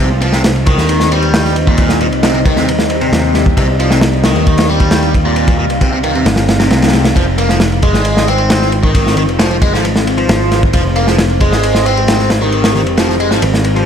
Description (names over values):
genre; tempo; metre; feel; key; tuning
breakbeat, breaks; 134 BPM; 4/4; straight; F minor; A4 = 440 Hz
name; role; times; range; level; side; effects
deep dark ambient pad; sustained chords; 0.0-13.9 s; G3 to F5; -18 LUFS; left 1 dB; chorus, built-in reverb, vintage 12-bit sampler grit, sidechain pumping
biting overdriven guitar; riff; 0.0-13.9 s; Bb2 to C4; -16 LUFS; equal; tube saturation, phaser, dub echo
modern bright picked electric bass; bass; 0.0-13.8 s; F1 to Eb2; -16 LUFS; equal; none
crunchy breakbeat drum kit; drums; 0.2-13.9 s; kick drum, ride cymbal, snare drum; -14 LUFS; equal; dub echo
room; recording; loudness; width
light reverb, studio reverb; echo-heavy mix; -9 LUFS; side -8 dB against mid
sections
0.0-13.9 A section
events
none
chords
0.0 Cm; 7.2 Fm7